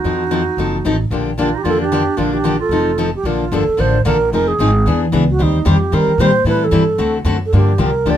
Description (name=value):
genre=acoustic string swing (jazz manouche)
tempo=224 BPM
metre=4/4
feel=swing 58% on 8ths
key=Bb major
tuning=A4 = 440 Hz
part: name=wooden-headed alto flute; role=melody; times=0.0-8.2 s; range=Eb4 to D5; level=-18 LUFS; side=right 3 dB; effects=none
part: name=clear clarinet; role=second line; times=0.0-3.1 s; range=D4 to F4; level=-22 LUFS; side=right 5 dB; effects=none
part: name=picked steel-string acoustic guitar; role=accompaniment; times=0.0-8.2 s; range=D3 to C5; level=-17 LUFS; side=left 3 dB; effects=none
part: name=upright bass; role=bass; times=0.0-8.2 s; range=F1 to Bb2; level=-18 LUFS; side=equal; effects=none
room=light reverb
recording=minimal, uncompressed stereo recording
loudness=-13 LUFS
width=side -10 dB against mid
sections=0.0-3.3 A section; 3.3-8.2 B section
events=none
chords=0.0 F7b9; 1.1 Bb6; 2.7 F7; 3.3 Bbmaj7; 4.3 Fm7; 4.9 E7; 5.4 Eb6; 6.5 Am7; 7.0 D7; 7.5 Gm7